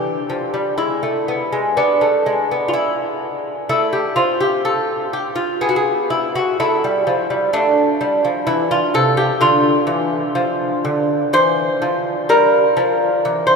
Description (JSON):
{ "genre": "classical, baroque-style dance for lute", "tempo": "63 BPM", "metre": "3/4", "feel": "rubato", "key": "A minor, D minor from 9.4 s", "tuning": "A4 = 440 Hz", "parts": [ { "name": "lute", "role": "solo", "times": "0.0-13.6 s", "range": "C3 to C5", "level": "-15 LUFS", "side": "equal", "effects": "none" } ], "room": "wet cathedral reverb, RT60 6.8 s", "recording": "in a vast, echoing space", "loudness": "-15 LUFS", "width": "side -4 dB against mid", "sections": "0.0-13.6 A section", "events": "none", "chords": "0.0 Em; 0.8 E7/G#; 3.7 Am; 5.6 N.C.; 6.6 Am; 9.4 Dm; 12.3 Gm", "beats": "| 0.79 1.77 2.75 | 3.71 4.66 5.63 | 6.60 7.55 8.49 | 9.42 10.37 11.36 | 12.31 13.24" }